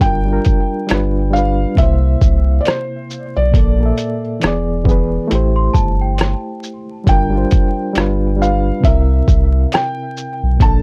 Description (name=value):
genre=lo-fi hip hop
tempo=68 BPM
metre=4/4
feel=swing 59% on 16ths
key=unclear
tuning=A4 = 440 Hz
part: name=felt-muted upright piano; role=melody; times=0.0-10.8 s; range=C5 to A5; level=-24 LUFS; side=equal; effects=low-pass filter, tape echo
part: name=reed electric piano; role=accompaniment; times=0.0-10.8 s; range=Bb2 to E5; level=-22 LUFS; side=equal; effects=fast tremolo, low-pass filter
part: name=saturated sub bass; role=bass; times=0.0-10.8 s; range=E1 to C2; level=-18 LUFS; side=equal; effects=tube saturation
part: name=lo-fi sampler-style drum kit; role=drums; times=0.0-10.8 s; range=hi-hat, kick drum, rim click, shaker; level=-16 LUFS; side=equal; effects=none
part: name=finger snaps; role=percussion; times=0.9-10.0 s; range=none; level=-35 LUFS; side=equal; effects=none
part: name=worn celesta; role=second line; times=5.6-7.0 s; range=G5 to C6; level=-27 LUFS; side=equal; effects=low-pass filter, tape echo
room=little or no reverb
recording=dry, gritty hardware recording, vinyl crackle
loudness=-15 LUFS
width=mono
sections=0.0-10.8 A section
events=none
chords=0.0 Gm7; 0.9 G7; 1.8 C7; 3.5 Bbmaj7; 4.4 E7; 5.3 Am7; 7.1 Gm7; 8.0 G7; 8.8 C7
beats=| 0.01 0.90 1.78 2.66 | 3.54 4.43 5.31 6.19 | 7.07 7.96 8.84 9.72 | 10.60